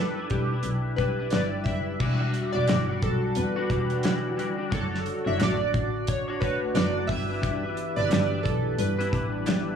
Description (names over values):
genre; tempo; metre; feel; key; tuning
indie pop, bedroom pop; 88 BPM; 4/4; swing 60% on 16ths; unclear; A4 = 440 Hz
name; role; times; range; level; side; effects
chorused retro synth keys; melody; 0.0-9.8 s; G4 to E5; -30 LUFS; right 2 dB; lush chorus, tape echo
twelve-string electric guitar; accompaniment; 0.0-9.8 s; E3 to C#5; -30 LUFS; left 3 dB; ensemble chorus, vibrato effect
warm double bass; bass; 0.0-9.7 s; E1 to G2; -29 LUFS; equal; none
damped 70s drum kit; drums; 0.3-9.7 s; crash cymbal, hi-hat, kick drum, snare drum; -29 LUFS; right 1 dB; none
warbly tape-like pad; sustained chords; 2.5-9.8 s; D3 to G4; -34 LUFS; left 1 dB; chorus, built-in reverb
group handclap; percussion; 2.7-9.7 s; none; -45 LUFS; right 5 dB; none
room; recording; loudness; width
light reverb, small room ambience; small room reverb; -24 LUFS; side -7 dB against mid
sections
0.0-2.0 A section; 2.0-9.8 B section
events
none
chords
0.0 Em9; 4.7 Dmaj7/F#; 7.1 G6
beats
0.65 1.33 | 2.01 2.69 3.36 4.04 | 4.72 5.40 6.08 6.75 | 7.43 8.11 8.79 9.47